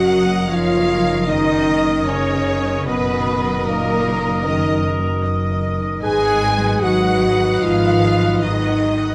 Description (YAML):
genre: cinematic, emotional film score for orchestra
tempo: 76 BPM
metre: 4/4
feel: rubato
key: G# dorian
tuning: A4 = 440 Hz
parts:
  - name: warm symphonic violin section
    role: melody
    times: 0.0-9.1 s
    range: A#4 to G#5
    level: -27 LUFS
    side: equal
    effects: none
  - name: mellow clarinet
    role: second line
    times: 0.0-9.0 s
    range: A#4 to B4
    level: -30 LUFS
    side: equal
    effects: none
  - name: mellow cor anglais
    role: second line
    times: 0.0-9.1 s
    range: D#5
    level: -30 LUFS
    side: equal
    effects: none
  - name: warm symphonic violin section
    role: second line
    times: 0.0-9.1 s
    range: A#4 to G#5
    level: -30 LUFS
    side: equal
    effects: none
  - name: dark grand piano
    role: accompaniment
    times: 0.0-9.1 s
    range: F#2 to D#5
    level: -29 LUFS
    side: equal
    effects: none
  - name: rich symphonic viola section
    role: accompaniment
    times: 0.0-9.1 s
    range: G#4 to F#5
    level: -33 LUFS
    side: equal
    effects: none
  - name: mellow French horn section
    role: sustained chords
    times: 0.0-9.1 s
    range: A#3 to G#4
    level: -22 LUFS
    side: equal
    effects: none
  - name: warm symphonic cello section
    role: bass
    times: 0.0-9.1 s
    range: A#2 to G#3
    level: -26 LUFS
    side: equal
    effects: none
  - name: warm symphonic double bass section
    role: bass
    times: 0.0-9.1 s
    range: F#1 to G#1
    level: -26 LUFS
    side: equal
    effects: none
room: moderate recital hall reverb, RT60 1.4 s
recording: none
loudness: -18 LUFS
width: mono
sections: 0.0-9.1 A section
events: none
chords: 0.0 F#6; 2.9 D#m/F#; 6.0 G#m7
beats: 0.50 1.28 2.07 | 2.86 3.67 4.46 5.25 | 6.04 6.84 7.63 8.41